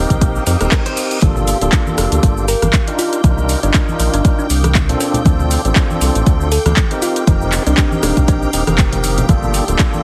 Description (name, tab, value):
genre	deep house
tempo	119 BPM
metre	4/4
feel	swing 56% on 16ths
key	G minor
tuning	A4 = 439 Hz
part	warbly tape-like pad	sustained chords	0.0-10.0 s	G4 to Eb6	-30 LUFS	equal	chorus, built-in reverb, sidechain pumping
part	tonewheel organ	stabs	0.0-10.0 s	Eb3 to Bb4	-23 LUFS	equal	overdrive, fast rotary speaker, vintage 12-bit sampler grit, tape echo
part	round analog bass	bass	0.0-9.8 s	D1 to F2	-20 LUFS	equal	sidechain pumping
part	string machine, violins	texture	0.0-10.0 s	G5	-34 LUFS	equal	ensemble chorus, sidechain pumping
part	deep house drum kit	drums	0.1-10.0 s	handclaps, hi-hat, rim click, shaker	-23 LUFS	equal	overdrive
part	electronic kick drum	drums	0.1-9.9 s	none	-16 LUFS	equal	overdrive
part	reverse cymbal	sound effects	0.4-1.2 s	none	-30 LUFS	equal	none
part	hollow-body jazz guitar	melody	0.7-1.2 s	Bb4 to C5	-29 LUFS	equal	delay
part	congas	percussion	1.2-10.0 s	none	-25 LUFS	equal	none
part	thumb-piano-like synth pluck	melody	2.5-9.0 s	D4 to Bb4	-24 LUFS	equal	chorus, delay
room	little or no reverb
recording	heavily compressed radio sound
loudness	-15 LUFS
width	mono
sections	0.0-10.0 A section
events	reverse cymbal 0.4-1.2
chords	0.0 F9sus4; 1.2 Gm7; 3.0 Cm11; 5.0 Dm7; 7.0 F9sus4; 9.3 Gm7